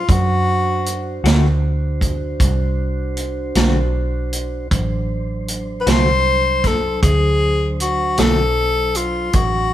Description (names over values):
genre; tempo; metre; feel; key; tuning
slow blues; 52 BPM (dotted quarters); 12/8; straight; D mixolydian; A4 = 438 Hz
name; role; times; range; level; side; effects
breathy tenor saxophone; melody; 0.0-9.7 s; F4 to C5; -18 LUFS; left 2 dB; none
mellow tonewheel organ; sustained chords; 0.0-9.7 s; F#3 to C5; -28 LUFS; right 2 dB; slow rotary speaker
vintage muted fingered electric bass; bass; 0.0-9.7 s; A1 to F#2; -20 LUFS; equal; none
vintage drum kit; drums; 0.1-9.5 s; hi-hat, kick drum, snare drum; -18 LUFS; right 1 dB; none
semi-hollow electric guitar; accompaniment; 1.2-8.4 s; D3 to F#4; -22 LUFS; left 2 dB; tremolo
room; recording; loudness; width
light reverb; band playing live in one room; -16 LUFS; side -12 dB against mid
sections
0.0-9.7 A section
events
none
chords
0.0 D7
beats
| 0.08 1.24 2.39 3.55 | 4.71 5.87 7.02 8.18 | 9.34